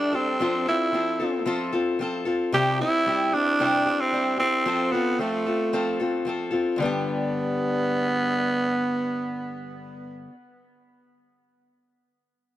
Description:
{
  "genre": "rock",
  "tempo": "113 BPM",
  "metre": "4/4",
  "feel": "straight",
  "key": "G mixolydian",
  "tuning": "A4 = 440 Hz",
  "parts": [
    { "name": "growling tenor saxophone", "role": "melody", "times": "0.0-10.2 s", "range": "A3 to G4", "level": "-24 LUFS", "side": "right 2 dB", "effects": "tape echo" },
    { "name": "picked acoustic archtop guitar", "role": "accompaniment", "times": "0.0-10.4 s", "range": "G2 to A4", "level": "-26 LUFS", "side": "left 2 dB", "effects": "none" }
  ],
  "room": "moderate plate reverb, RT60 3.6 s",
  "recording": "none",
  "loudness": "-22 LUFS",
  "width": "side -13 dB against mid",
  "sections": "0.0-6.8 A section; 6.8-11.1 B section",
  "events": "none",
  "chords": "0.4 F; 2.5 C; 4.7 F; 6.8 G"
}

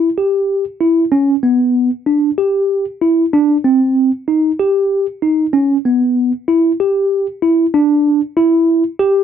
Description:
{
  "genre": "progressive instrumental, progressive",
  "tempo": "190 BPM (eighths)",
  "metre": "7/8",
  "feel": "straight",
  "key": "E dorian",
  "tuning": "A4 = 441 Hz",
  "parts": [
    { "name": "tine electric piano", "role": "solo", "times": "0.0-9.2 s", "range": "B3 to G4", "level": "-12 LUFS", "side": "equal", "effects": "medium stereo tremolo" }
  ],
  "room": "moderate small room reverb, RT60 0.5 s",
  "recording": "dry, close 1970s-style studio recording",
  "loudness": "-12 LUFS",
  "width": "side -8 dB against mid",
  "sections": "0.0-7.7 A section; 7.7-9.2 B section",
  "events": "none",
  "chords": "none"
}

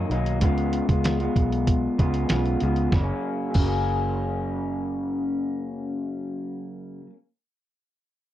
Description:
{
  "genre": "indie pop, bedroom pop",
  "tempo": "96 BPM",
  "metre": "4/4",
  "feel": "straight",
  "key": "F# major",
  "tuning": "A4 = 441 Hz",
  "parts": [
    { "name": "electric guitar through a small old amp", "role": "accompaniment", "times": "0.0-7.2 s", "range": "F#2 to E#4", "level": "-26 LUFS", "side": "left 1 dB", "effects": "lush chorus, warbly pitch drift" },
    { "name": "vintage muted fingered electric bass", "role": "bass", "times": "0.0-6.9 s", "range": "F#1 to C#2", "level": "-27 LUFS", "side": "right 1 dB", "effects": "none" },
    { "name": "lo-fi sampler-style drum kit", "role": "drums", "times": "0.1-3.7 s", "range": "crash cymbal, hi-hat, kick drum, snare drum", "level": "-23 LUFS", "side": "right 1 dB", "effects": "none" }
  ],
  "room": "light reverb",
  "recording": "dry, close 1970s-style studio recording",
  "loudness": "-22 LUFS",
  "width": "side -12 dB against mid",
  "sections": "0.0-2.9 A section; 2.9-5.4 B section",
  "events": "none",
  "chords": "0.4 C#7; 2.9 F#"
}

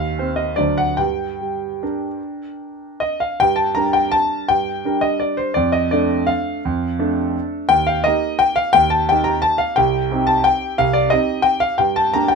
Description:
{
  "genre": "classical, piano waltz",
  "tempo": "140-185 BPM",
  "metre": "3/4",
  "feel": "rubato",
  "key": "G minor",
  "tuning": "A4 = 440 Hz",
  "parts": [
    { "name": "clear concert grand piano", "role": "solo", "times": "0.0-12.4 s", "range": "C2 to Bb5", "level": "-16 LUFS", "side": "equal", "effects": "none" }
  ],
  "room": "light reverb",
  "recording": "minimal, uncompressed stereo recording",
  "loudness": "-16 LUFS",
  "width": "side -4 dB against mid",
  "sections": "0.0-3.4 A section; 3.4-12.4 B section",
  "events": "none",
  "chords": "0.0 Cm/Eb; 0.6 D7; 1.0 Gm; 5.6 Dm/F; 7.7 Eb; 9.8 Cm; 11.8 Gm"
}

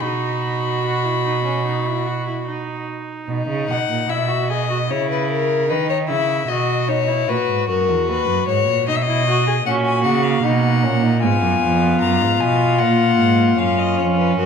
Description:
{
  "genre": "classical, baroque-style fugue for string quartet",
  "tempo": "75 BPM",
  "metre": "4/4",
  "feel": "straight",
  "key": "B major",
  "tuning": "A4 = 439 Hz",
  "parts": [
    { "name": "warm violin", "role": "melody", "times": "0.0-14.5 s", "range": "A#4 to B5", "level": "-22 LUFS", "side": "left 8 dB", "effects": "none" },
    { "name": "dark violin", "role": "second line", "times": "0.0-14.5 s", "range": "C#4 to G#4", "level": "-22 LUFS", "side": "left 3 dB", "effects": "none" },
    { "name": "rich viola", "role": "accompaniment", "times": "0.0-3.3, 9.7-14.5 s", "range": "A#3 to F#4", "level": "-22 LUFS", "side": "right 1 dB", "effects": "none" },
    { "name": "rich cello", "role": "bass", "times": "0.0-14.5 s", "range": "D#2 to D#3", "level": "-21 LUFS", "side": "right 5 dB", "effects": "none" }
  ],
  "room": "wet recital hall reverb, RT60 1.7 s",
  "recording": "dark, warm production",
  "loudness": "-16 LUFS",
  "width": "side -6 dB against mid",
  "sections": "0.0-3.3 A section; 3.3-14.5 B section",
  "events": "none",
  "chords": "0.0 B; 4.9 C#m13; 6.5 B; 8.1 B/D#; 9.7 F#/A#; 11.2 Fdim; 12.8 F#"
}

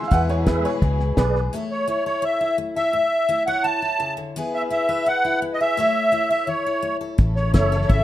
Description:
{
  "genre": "honky-tonk and classic country",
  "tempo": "170 BPM",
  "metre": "4/4",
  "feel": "straight",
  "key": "A major",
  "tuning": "A4 = 442 Hz",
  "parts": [
    { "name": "bright upright piano", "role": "second line", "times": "0.0-1.4 s", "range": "Bb4 to E6", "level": "-27 LUFS", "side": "right 2 dB", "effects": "none" },
    { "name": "picked steel-string acoustic guitar", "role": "accompaniment", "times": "0.0-8.0 s", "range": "A2 to C#5", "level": "-28 LUFS", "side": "left 3 dB", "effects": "none" },
    { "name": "warm symphonic string section", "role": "sustained chords", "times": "0.0-1.5, 7.2-8.0 s", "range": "B2 to A4", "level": "-30 LUFS", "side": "left 1 dB", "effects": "none" },
    { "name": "cloth-damped thuddy drum kit", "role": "drums", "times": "0.0-1.4, 7.2-8.0 s", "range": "hi-hat, kick drum, snare drum", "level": "-20 LUFS", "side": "equal", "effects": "none" },
    { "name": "vintage muted fingered electric bass", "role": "bass", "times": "0.1-1.5, 7.2-8.0 s", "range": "F#1 to E2", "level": "-21 LUFS", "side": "equal", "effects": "none" },
    { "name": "tonewheel organ", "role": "accompaniment", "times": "0.5-1.4, 7.5-7.8 s", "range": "G#4 to E5", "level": "-28 LUFS", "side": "right 5 dB", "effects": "slow rotary speaker, chorus vibrato" },
    { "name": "musette accordion", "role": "melody", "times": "1.7-8.0 s", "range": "C#5 to A5", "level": "-20 LUFS", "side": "equal", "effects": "none" }
  ],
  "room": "moderate digital room reverb, RT60 1.2 s, small room reverb",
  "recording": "rough home demo mix, faint mains hum",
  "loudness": "-19 LUFS",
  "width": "side -13 dB against mid",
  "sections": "0.1-1.5 A section; 1.5-8.0 B section",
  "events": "none",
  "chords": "0.1 E; 1.5 A; 4.4 E; 5.8 A"
}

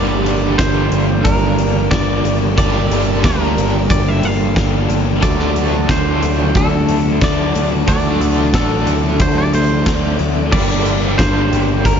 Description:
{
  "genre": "rock, shoegaze and dream pop",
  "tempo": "90 BPM",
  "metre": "4/4",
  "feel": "straight",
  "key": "unclear",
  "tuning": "A4 = 440 Hz",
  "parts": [
    { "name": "twangy electric guitar", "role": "melody", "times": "0.0-12.0 s", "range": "A4 to F5", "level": "-23 LUFS", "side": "equal", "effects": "slapback echo" },
    { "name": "string machine, full ensemble", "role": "sustained chords", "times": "0.0-12.0 s", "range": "A4 to E6", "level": "-28 LUFS", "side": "equal", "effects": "phaser, ensemble chorus" },
    { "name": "biting overdriven guitar", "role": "riff", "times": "0.0-12.0 s", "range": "G2 to D4", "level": "-22 LUFS", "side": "left 1 dB", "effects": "tremolo" },
    { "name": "overdriven electric guitar", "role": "riff", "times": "0.0-12.0 s", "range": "G2 to D4", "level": "-22 LUFS", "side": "left 12 dB", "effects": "lush chorus" },
    { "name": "overdriven electric guitar", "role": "riff", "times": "0.0-12.0 s", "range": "G2 to G4", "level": "-22 LUFS", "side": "right 12 dB", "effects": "reverse reverb" },
    { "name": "picked electric bass", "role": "bass", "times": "0.0-12.0 s", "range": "G1 to D2", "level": "-19 LUFS", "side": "equal", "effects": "none" },
    { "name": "huge arena drum kit", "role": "drums", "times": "0.3-12.0 s", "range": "crash cymbal, hi-hat, kick drum, snare drum", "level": "-18 LUFS", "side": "equal", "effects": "none" }
  ],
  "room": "studio ambience",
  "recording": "nothing above 7.5 kHz",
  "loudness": "-13 LUFS",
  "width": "side -7 dB against mid",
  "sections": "0.0-12.0 A section",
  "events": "none",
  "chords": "0.0 Gm; 5.2 D; 10.5 Gm"
}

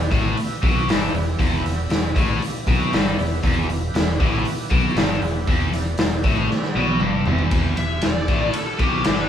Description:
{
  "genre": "blues rock power trio and southern rock",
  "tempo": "117 BPM",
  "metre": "4/4",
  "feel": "straight",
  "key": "E minor",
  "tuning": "A4 = 438 Hz",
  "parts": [
    { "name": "overdriven tonewheel organ", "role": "sustained chords", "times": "0.0-7.5 s", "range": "E4 to E5", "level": "-31 LUFS", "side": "right 4 dB", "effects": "slow rotary speaker, chorus vibrato" },
    { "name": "biting overdriven guitar", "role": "riff", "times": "0.0-9.3 s", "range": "E2 to B2", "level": "-24 LUFS", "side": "left 1 dB", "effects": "none" },
    { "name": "growling fingered electric bass", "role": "bass", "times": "0.0-9.3 s", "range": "E1 to B1", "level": "-25 LUFS", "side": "equal", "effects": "overdrive" },
    { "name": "raw garage drum kit", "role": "drums", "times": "0.1-9.2 s", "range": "hi-hat, kick drum, ride cymbal, snare drum, toms", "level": "-21 LUFS", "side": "left 1 dB", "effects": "none" },
    { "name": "bluesy overdriven lead guitar", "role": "melody", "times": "7.8-9.3 s", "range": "G4 to E5", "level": "-25 LUFS", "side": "left 2 dB", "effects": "distortion" }
  ],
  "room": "moderate studio ambience, RT60 0.5 s",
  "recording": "band playing live in one room, small room ambience",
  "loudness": "-18 LUFS",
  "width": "side -9 dB against mid",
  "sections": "0.0-7.5 A section; 7.5-9.3 B section",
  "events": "drum fill 6.5-7.5; lead electric guitar solo 7.5-9.3",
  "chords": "0.0 Em"
}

